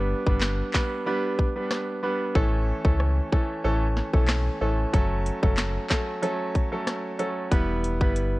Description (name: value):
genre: dancehall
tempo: 93 BPM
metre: 4/4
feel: straight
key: F# phrygian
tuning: A4 = 438 Hz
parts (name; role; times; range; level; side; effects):
- bright grand piano; accompaniment; 0.0-8.4 s; E3 to B4; -27 LUFS; right 1 dB; none
- sub bass with octave; bass; 0.0-8.4 s; E1 to C#2; -26 LUFS; equal; none
- island pop drum kit; drums; 0.3-8.3 s; handclaps, hi-hat, kick drum, rim click, snare drum; -24 LUFS; equal; none
room: digital ambience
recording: worn, warbling old tape, cassette tape, warbly pitch drift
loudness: -23 LUFS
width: side -20 dB against mid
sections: 0.0-8.4 A section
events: none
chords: 0.0 G; 2.4 A; 4.9 F#m; 7.5 Em